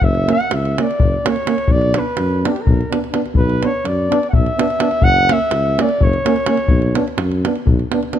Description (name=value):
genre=balkan folk, Balkan brass band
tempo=252 BPM (eighths)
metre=7/8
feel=straight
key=B harmonic minor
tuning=A4 = 437 Hz
part: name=warm flugelhorn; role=melody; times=0.0-7.2 s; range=G4 to F#5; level=-19 LUFS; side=equal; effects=none
part: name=mellow tuba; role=bass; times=0.0-7.8 s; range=F#1 to F#2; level=-20 LUFS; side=equal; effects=none
part: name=davul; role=percussion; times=0.0-8.2 s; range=none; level=-18 LUFS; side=left 1 dB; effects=none
part: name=mellow euphonium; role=accompaniment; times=0.3-8.2 s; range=A#3 to B3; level=-23 LUFS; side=right 7 dB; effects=none
part: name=warm trombone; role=accompaniment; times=0.3-8.2 s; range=C#4 to D4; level=-26 LUFS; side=left 6 dB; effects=none
room=light reverb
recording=close, detailed microphones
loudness=-14 LUFS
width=side -10 dB against mid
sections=0.0-8.2 A section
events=flugelhorn solo 0.0-8.2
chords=0.0 F#; 1.7 Bm; 5.0 F#; 6.7 Bm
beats=| 0.01 0.25 0.49 0.73 0.97 1.21 1.45 | 1.69 1.92 2.16 2.40 2.64 2.88 3.12 | 3.35 3.59 3.83 4.07 4.31 4.54 4.78 | 5.02 5.26 5.50 5.74 5.97 6.21 6.45 | 6.69 6.92 7.16 7.40 7.64 7.88 8.12